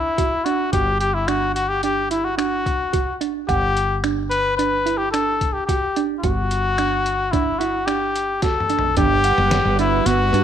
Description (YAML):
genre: progressive instrumental, band music in an uneven meter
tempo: 109 BPM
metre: 5/4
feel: straight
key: G major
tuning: A4 = 440 Hz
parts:
  - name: clear trumpet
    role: melody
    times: 0.0-10.4 s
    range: E4 to B4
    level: -20 LUFS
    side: left 3 dB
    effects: none
  - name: woody fretless electric bass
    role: bass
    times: 0.0-10.4 s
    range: F#1 to G2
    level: -25 LUFS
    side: left 1 dB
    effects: none
  - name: thumb-piano-like synth pluck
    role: arpeggios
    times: 0.2-10.4 s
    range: B3 to F#5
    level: -25 LUFS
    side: right 11 dB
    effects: chorus
  - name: trip hop sampler-style drum kit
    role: drums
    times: 0.2-10.4 s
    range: finger snaps, hi-hat, kick drum, snare drum, toms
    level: -26 LUFS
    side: left 1 dB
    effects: none
  - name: airy breathy pad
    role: accompaniment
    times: 9.1-10.4 s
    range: G3 to F#5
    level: -24 LUFS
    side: right 14 dB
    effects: chorus
room: moderate plate reverb, RT60 1.5 s, digital ambience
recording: 1960s-style stereo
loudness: -18 LUFS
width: side -9 dB against mid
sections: 0.0-9.0 A section; 9.0-10.4 B section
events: drum fill 8.4-9.0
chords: 0.0 G5; 9.0 Gmaj7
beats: 0.18 | 0.73 1.28 1.83 2.38 2.94 | 3.48 4.03 4.58 5.13 5.68 | 6.23 6.78 7.33 7.88 8.42 | 8.97 9.52 10.07